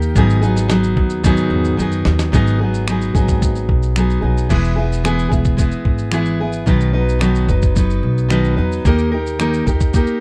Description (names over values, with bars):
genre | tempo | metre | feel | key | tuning
acoustic pop | 110 BPM | 4/4 | straight | E major | A4 = 443 Hz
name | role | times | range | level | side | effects
fingerpicked steel-string acoustic guitar | accompaniment | 0.0-10.2 s | G#2 to B4 | -20 LUFS | equal | none
upright bass | bass | 0.0-10.0 s | E1 to F#2 | -21 LUFS | equal | none
dusty soul sampler-style drum kit | drums | 0.0-10.2 s | crash cymbal, finger snaps, kick drum, shaker, snare drum | -20 LUFS | equal | none
room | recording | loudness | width
little or no reverb | dry, close 1970s-style studio recording | -16 LUFS | mono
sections
0.0-2.3 A section; 2.3-4.5 B section; 4.5-10.2 C section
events
drum fill 1.8-2.3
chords
0.2 G#m7; 4.5 E; 6.7 B; 8.9 D#